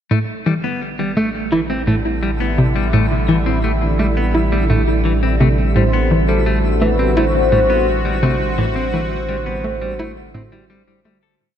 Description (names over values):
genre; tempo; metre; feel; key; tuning
ambient, sequencer-driven space music; 85 BPM; 4/4; straight; A dorian; A4 = 440 Hz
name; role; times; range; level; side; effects
sweeping resonant pad; sustained chords; 0.1-11.4 s; D3 to F#4; -23 LUFS; right 1 dB; chorus, shimmer reverb
clean electric guitar; arpeggios; 0.1-11.3 s; E3 to A4; -23 LUFS; moving between left 7 dB and right 2 dB; auto-pan, shimmer reverb, tape echo
hollow square pluck; riff; 0.1-11.2 s; A2 to E4; -20 LUFS; equal; chorus, shimmer reverb, tape echo
round analog bass; bass; 0.1-11.4 s; A1; -20 LUFS; equal; none
twinkling granular texture; texture; 2.2-11.4 s; E4 to E5; -31 LUFS; right 2 dB; built-in reverb, shimmer reverb
soft octave-layered synth lead; melody; 5.8-11.0 s; A4 to C5; -20 LUFS; left 2 dB; chorus, shimmer reverb, tape echo
room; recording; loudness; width
moderate lush hall reverb, RT60 2.5 s; none; -14 LUFS; side -9 dB against mid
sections
0.1-11.4 A section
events
fade-in on analog synth pad 0.1-11.4; fade-in on synth texture 0.1-11.4; fade-out 7.6-11.4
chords
0.1 Am